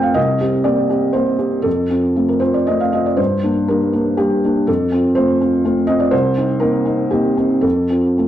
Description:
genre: neoclassical minimalist piano.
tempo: 110-127 BPM.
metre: 3/4.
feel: rubato.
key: unclear.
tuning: A4 = 445 Hz.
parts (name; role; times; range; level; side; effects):
felt-muted upright piano; solo; 0.0-8.3 s; C2 to G5; -14 LUFS; equal; slapback echo.
room: light reverb.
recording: dry, close 1970s-style studio recording.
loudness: -14 LUFS.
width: side -11 dB against mid.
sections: 0.0-8.3 A section.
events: none.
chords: 0.2 Cm7; 1.7 F; 3.2 Gm; 4.7 F; 6.1 Cm7; 7.6 F.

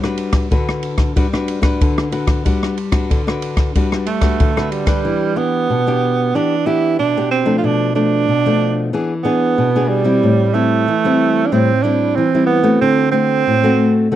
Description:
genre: samba and choro.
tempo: 93 BPM.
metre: 4/4.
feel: straight.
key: G major, E minor from 5.1 s.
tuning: A4 = 440 Hz.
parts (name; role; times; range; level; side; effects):
nylon-string guitar; accompaniment; 0.0-14.2 s; A2 to B4; -17 LUFS; left 2 dB; none.
open jazz drum kit; drums; 0.0-5.0 s; kick drum, ride cymbal, rim click; -17 LUFS; equal; none.
mellow tenor saxophone; second line; 4.1-14.1 s; G3 to F4; -16 LUFS; right 6 dB; none.
room: little or no reverb.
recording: dry, close 1970s-style studio recording.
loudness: -14 LUFS.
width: side -12 dB against mid.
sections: 0.0-5.1 A section; 5.1-14.2 B section.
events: tenor saxophone solo 5.1-14.2.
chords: 0.0 Gmaj7; 5.1 Em7; 7.6 Bm7b5; 8.9 E7; 10.2 Am7; 12.8 D7.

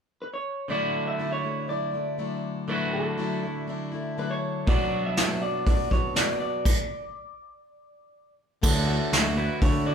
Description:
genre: folk rock and heartland rock.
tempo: 121 BPM.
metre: 4/4.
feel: straight.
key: D major.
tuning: A4 = 440 Hz.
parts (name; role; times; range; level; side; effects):
electric guitar through a small old amp; melody; 0.2-9.9 s; A4 to E5; -31 LUFS; equal; none.
picked plugged-in steel-string acoustic guitar; accompaniment; 0.7-9.9 s; B2 to F#4; -32 LUFS; left 4 dB; none.
electric guitar at the edge of break-up; riff; 0.7-9.9 s; B2 to F#4; -32 LUFS; right 2 dB; none.
soft brush drum kit; drums; 4.7-9.7 s; crash cymbal, hi-hat, kick drum, snare drum; -24 LUFS; equal; none.
picked electric bass; bass; 8.6-9.9 s; D2 to D3; -26 LUFS; right 1 dB; none.
room: light reverb.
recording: band playing live in one room.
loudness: -24 LUFS.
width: side -7 dB against mid.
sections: 0.7-8.6 A section; 8.6-9.9 B section.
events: stop 6.7-8.6.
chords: 0.0 N.C.; 0.7 Dadd9; 4.7 Bm; 8.6 Dadd9.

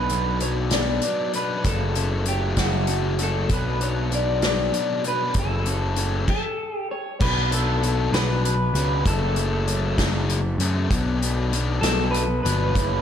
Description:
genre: indie rock.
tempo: 65 BPM (dotted quarters).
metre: 6/8.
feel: straight.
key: B minor.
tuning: A4 = 440 Hz.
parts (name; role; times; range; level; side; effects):
electric guitar through a small old amp; melody; 0.0-13.0 s; F#4 to D5; -26 LUFS; equal; wide subtle chorus, digital delay.
fuzz guitar; riff; 0.0-13.0 s; B2 to F#4; -27 LUFS; left 5 dB; distortion, slapback echo.
fuzz picked electric bass; bass; 0.0-13.0 s; F#1 to F#2; -24 LUFS; equal; overdrive.
loose indie drum kit; drums; 0.1-12.9 s; crash cymbal, hi-hat, kick drum, snare drum; -26 LUFS; equal; none.
room: moderate lush hall reverb, RT60 2.2 s.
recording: big arena sound.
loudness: -20 LUFS.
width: side -9 dB against mid.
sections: 0.0-7.2 A section; 7.2-13.0 B section.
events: stop 6.3-7.2.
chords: 0.0 Bm; 1.7 F#m; 3.5 Bm; 5.4 F#m; 7.2 Bm; 9.1 F#m; 10.9 Bm.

